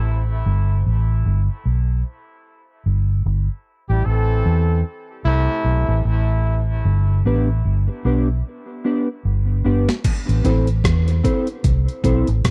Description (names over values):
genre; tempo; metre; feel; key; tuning
dub reggae; 75 BPM; 4/4; swing 59% on 16ths; A minor; A4 = 436 Hz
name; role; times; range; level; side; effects
vintage muted fingered electric bass; bass; 0.0-12.5 s; G1 to E2; -20 LUFS; equal; none
clear horn section; second line; 3.9-6.0 s; C3 to A4; -29 LUFS; equal; dub echo
mellow electric guitar; accompaniment; 7.3-12.3 s; B3 to C5; -25 LUFS; equal; analog chorus, dub echo
breakbeat sampler-style drum kit; drums; 9.9-12.5 s; crash cymbal, hi-hat, kick drum, rim click, snare drum; -23 LUFS; equal; overdrive
room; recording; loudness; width
little or no reverb; dry, close 1970s-style studio recording; -19 LUFS; mono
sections
0.0-10.0 A section; 10.0-12.5 B section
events
break 0.0-6.9; drum fill 8.4-10.0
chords
0.5 G; 3.7 Am; 6.9 G; 10.0 Am